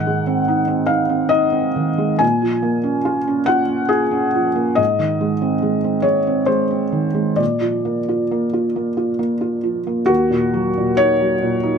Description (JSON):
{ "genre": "neoclassical minimalist piano", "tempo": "69 BPM", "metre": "3/4", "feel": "uneven beats, rubato", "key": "Eb dorian", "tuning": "A4 = 445 Hz", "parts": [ { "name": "felt-muted upright piano", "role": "solo", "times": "0.0-11.8 s", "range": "Eb2 to Ab5", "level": "-16 LUFS", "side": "equal", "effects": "none" } ], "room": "light reverb", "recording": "close, detailed microphones", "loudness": "-16 LUFS", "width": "side -6 dB against mid", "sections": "0.0-10.1 A section; 10.1-11.8 B section", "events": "none", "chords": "0.0 Ab; 2.2 Bbm7; 4.8 Ab; 7.4 Bb; 10.1 Ebm" }